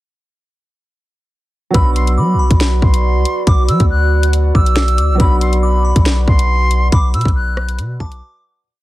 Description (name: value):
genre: hip hop, drill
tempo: 139 BPM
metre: 4/4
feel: half-time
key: B phrygian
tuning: A4 = 440 Hz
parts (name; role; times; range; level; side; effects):
- silver concert flute; melody; 1.7-8.6 s; B5 to F#6; -20 LUFS; equal; none
- glassy synth bell; second line; 1.7-8.2 s; A5 to E6; -28 LUFS; left 1 dB; chorus, digital delay
- felt-muted upright piano; accompaniment; 1.7-8.7 s; F#3 to F#4; -24 LUFS; right 4 dB; none
- warbly tape-like pad; sustained chords; 1.7-8.6 s; F#4 to F#5; -24 LUFS; right 3 dB; chorus, built-in reverb
- long sustained 808-style bass; bass; 1.7-8.2 s; B1 to F#3; -14 LUFS; equal; none
- drill drum kit; drums; 1.7-8.2 s; finger snaps, hi-hat, kick drum, rim click, snare drum; -14 LUFS; equal; none
room: little or no reverb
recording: dense, heavily limited modern master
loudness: -11 LUFS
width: side -16 dB against mid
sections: 1.7-8.7 hook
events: fade-out 6.9-8.7; break 8.2-8.7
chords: 1.7 Bm